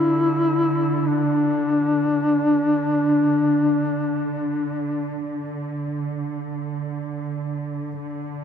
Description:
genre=caucasian folk, Caucasian lament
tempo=free time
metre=none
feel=none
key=unclear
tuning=A4 = 440 Hz
part: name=mellow duduk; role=melody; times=0.0-5.2 s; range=D4 to E4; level=-20 LUFS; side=left 2 dB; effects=none
part: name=muted chamber string section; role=drone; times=0.0-8.4 s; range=D3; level=-26 LUFS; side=right 3 dB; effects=none
room=wet cathedral reverb, RT60 4.3 s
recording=dark, warm production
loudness=-20 LUFS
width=side -8 dB against mid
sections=0.0-8.0 A section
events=none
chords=none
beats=free time

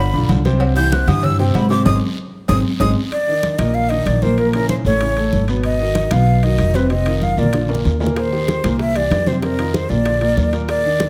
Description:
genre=Afro-Cuban jazz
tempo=190 BPM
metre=4/4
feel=straight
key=unclear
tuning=A4 = 440 Hz
part: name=breathy concert flute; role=melody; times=0.0-11.1 s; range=Bb4 to G6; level=-23 LUFS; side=equal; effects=none
part: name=warm concert grand piano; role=accompaniment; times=0.0-11.1 s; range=A2 to C5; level=-23 LUFS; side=equal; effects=none
part: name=upright bass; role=bass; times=0.0-11.1 s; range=F1 to Ab2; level=-21 LUFS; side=equal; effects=none
part: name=congas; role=percussion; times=0.1-11.1 s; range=none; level=-26 LUFS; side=equal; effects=none
part: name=agogo bells and timbales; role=percussion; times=0.3-11.1 s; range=none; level=-34 LUFS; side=equal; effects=none
part: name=cowbell and bongos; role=percussion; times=0.3-2.9, 8.2-11.1 s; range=none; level=-31 LUFS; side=equal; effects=none
part: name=guiro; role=percussion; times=0.3-11.1 s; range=none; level=-39 LUFS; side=equal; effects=none
room=moderate large studio reverb, RT60 1.5 s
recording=none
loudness=-17 LUFS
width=mono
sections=0.0-3.1 A section; 3.1-11.1 B section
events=flute solo 0.0-3.1; drum fill 1.9-3.1, 7.2-8.2; band accent 1.9-3.1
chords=0.0 G7; 0.6 C; 1.9 Ab; 3.1 Eb5; 4.4 Bbdim; 5.0 Aadd9; 5.6 Abm7; 6.9 F5; 7.5 Bb; 8.2 Eb6; 8.8 C7; 9.4 F5; 10.1 Bb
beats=0.29 | 0.61 0.92 1.24 1.55 | 1.86 2.18 2.49 2.81 | 3.12 3.43 3.75 4.06 | 4.38 4.70 5.01 5.33 | 5.64 5.96 6.27 6.59 | 6.90 7.22 7.53 7.85 | 8.16 8.48 8.79 9.11 | 9.43 9.74 10.06 10.37 | 10.69 11.00

